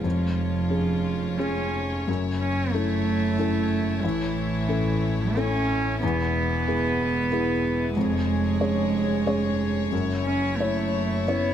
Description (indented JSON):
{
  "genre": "neoclassical piano and strings",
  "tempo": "91 BPM",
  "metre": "3/4",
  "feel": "rubato",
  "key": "F# minor",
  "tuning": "A4 = 440 Hz",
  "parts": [
    { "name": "dark cello", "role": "second line", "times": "0.0-11.5 s", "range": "E3 to C#4", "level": "-26 LUFS", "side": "right 5 dB", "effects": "none" },
    { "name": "felt-muted upright piano", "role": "accompaniment", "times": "0.0-11.5 s", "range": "E2 to C#5", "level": "-27 LUFS", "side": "left 4 dB", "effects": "none" },
    { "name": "rich chamber string section", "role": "sustained chords", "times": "0.0-11.5 s", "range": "F#3 to C#5", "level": "-34 LUFS", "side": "left 3 dB", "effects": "none" },
    { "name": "rich double bass", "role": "bass", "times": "0.0-11.5 s", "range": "E1 to A1", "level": "-30 LUFS", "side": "left 1 dB", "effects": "none" }
  ],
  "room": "light reverb",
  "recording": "close, detailed microphones",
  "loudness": "-22 LUFS",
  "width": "side -9 dB against mid",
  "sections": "0.0-11.5 A section",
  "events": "none",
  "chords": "0.0 C#/E#; 2.1 F#m7; 4.0 A; 6.0 E; 8.0 C#/E#; 9.9 F#m7"
}